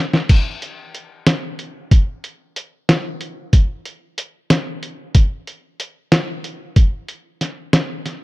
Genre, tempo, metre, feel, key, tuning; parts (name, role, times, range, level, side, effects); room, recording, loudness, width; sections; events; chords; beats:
progressive instrumental, progressive; 186 BPM (eighths); 5/8; straight
lo-fi sampler-style drum kit; drums; 0.1-8.2 s; crash cymbal, hi-hat, kick drum, snare drum; -15 LUFS; equal
little or no reverb; dry, close 1970s-style studio recording; -16 LUFS; side -20 dB against mid
0.3-8.2 A section
drum fill 0.0
| 0.29 0.62 0.94 1.26 1.59 | 1.91 2.24 2.56 2.88 3.21 | 3.53 3.85 4.18 4.50 4.82 | 5.15 5.47 5.79 6.12 6.44 | 6.76 7.08 7.41 7.73 8.05